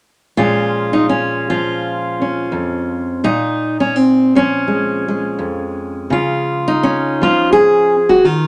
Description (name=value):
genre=folk, solo fingerstyle acoustic guitar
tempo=84 BPM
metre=4/4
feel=swing 56% on 8ths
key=Bb minor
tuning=A4 = 439 Hz
part: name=fingerpicked steel-string acoustic guitar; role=solo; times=0.4-8.5 s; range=F2 to Ab4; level=-16 LUFS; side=equal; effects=none
room=wet club reverb, RT60 0.6 s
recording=none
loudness=-16 LUFS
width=mono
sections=0.4-8.5 A section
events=none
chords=0.4 Bbm7; 6.1 Db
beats=| 0.38 1.09 1.81 2.52 | 3.24 3.96 4.67 5.39 | 6.10 6.82 7.53 8.25